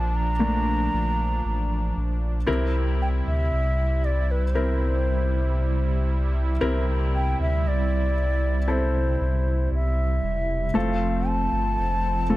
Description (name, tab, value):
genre	pop ballad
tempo	58 BPM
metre	4/4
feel	straight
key	unclear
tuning	A4 = 439 Hz
part	mellow bansuri	melody	0.0-12.4 s	C5 to Bb5	-29 LUFS	left 1 dB	none
part	warm concert grand piano	accompaniment	0.0-12.4 s	Bb2 to Bb4	-29 LUFS	left 1 dB	none
part	warm analog pad	sustained chords	0.0-12.4 s	C3 to E4	-31 LUFS	right 2 dB	chorus, tremolo
part	sub bass with octave	bass	0.0-12.4 s	E1 to D2	-24 LUFS	equal	none
room	studio ambience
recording	none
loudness	-21 LUFS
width	side -17 dB against mid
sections	0.0-10.8 A section; 10.8-12.4 B section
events	none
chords	0.0 Bbmaj7; 2.5 C7; 10.8 F